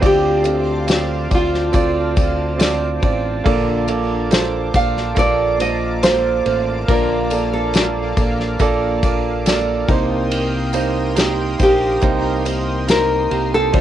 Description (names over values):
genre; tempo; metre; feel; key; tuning
pop ballad; 70 BPM; 4/4; straight; unclear; A4 = 439 Hz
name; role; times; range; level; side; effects
warm baby grand piano; accompaniment; 0.0-13.8 s; Bb2 to F5; -21 LUFS; right 7 dB; cassette tape
chorused pulse-width pad; sustained chords; 0.0-13.8 s; Bb3 to Eb6; -28 LUFS; left 1 dB; cassette tape
fingerpicked plugged-in steel-string acoustic guitar; arpeggios; 0.0-13.8 s; Bb2 to A4; -28 LUFS; left 8 dB; cassette tape, analog delay
fingered electric bass; bass; 0.0-13.8 s; A1 to D2; -24 LUFS; left 1 dB; none
unplugged drum kit; drums; 0.0-13.8 s; kick drum, ride cymbal, snare drum; -20 LUFS; left 1 dB; cassette tape
tambourine; percussion; 0.0-13.1 s; none; -34 LUFS; left 13 dB; none
nylon-string guitar; melody; 0.1-13.8 s; F4 to F5; -18 LUFS; equal; cassette tape
room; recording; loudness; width
light reverb; home recording on cassette; -15 LUFS; side -11 dB against mid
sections
0.0-13.8 A section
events
none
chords
0.0 Dm7; 3.5 Bbmaj7; 9.9 Cm7